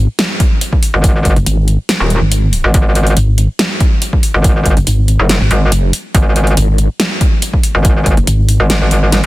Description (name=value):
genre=heavy wobble dubstep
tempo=141 BPM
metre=4/4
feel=half-time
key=unclear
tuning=A4 = 439 Hz
part: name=pulsing pluck wobble bass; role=bass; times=0.0-8.6 s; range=F#1 to G#1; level=-10 LUFS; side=equal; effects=chorus, overdrive
part: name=big-room dance drum kit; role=drums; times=0.2-9.3 s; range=hi-hat, snare drum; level=-16 LUFS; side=equal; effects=none
part: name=electronic kick drum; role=drums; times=0.4-8.2 s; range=none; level=-12 LUFS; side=equal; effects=none
part: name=metallic wobble bass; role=bass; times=0.9-9.3 s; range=D#1 to G#1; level=-11 LUFS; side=equal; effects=chorus, overdrive
room=little or no reverb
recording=dense, heavily limited modern master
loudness=-10 LUFS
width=side -18 dB against mid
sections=0.0-9.3 A section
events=none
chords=0.0 G#5